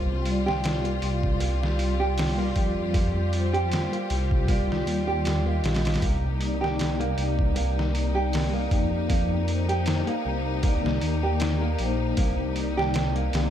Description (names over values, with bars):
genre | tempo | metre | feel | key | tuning
trip hop | 78 BPM | 4/4 | swing 55% on 16ths | unclear | A4 = 440 Hz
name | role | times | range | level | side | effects
vibraphone with soft mallets | accompaniment | 0.0-13.5 s | G3 to Eb5 | -30 LUFS | left 2 dB | harmonic tremolo, tape echo
clear studio string section | sustained chords | 0.0-13.5 s | G3 to F4 | -36 LUFS | left 3 dB | none
nylon-string guitar | arpeggios | 0.0-13.5 s | Bb3 to G4 | -31 LUFS | right 4 dB | ping-pong delay
dark detuned saw bass | bass | 0.0-13.5 s | Bb1 to F2 | -27 LUFS | equal | none
bowed-like drone | texture | 0.0-13.5 s | G4 | -39 LUFS | left 5 dB | built-in reverb
trip hop sampler-style drum kit | drums | 0.3-13.5 s | hi-hat, kick drum, snare drum | -28 LUFS | equal | overdrive
room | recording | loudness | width
little or no reverb | none | -23 LUFS | side -10 dB against mid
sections
0.0-13.5 A section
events
none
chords
0.0 Ebmaj9/C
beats
0.64 1.41 2.18 | 2.95 3.71 4.48 5.25 | 6.02 6.79 7.56 8.33 | 9.10 9.87 10.64 11.41 | 12.18 12.95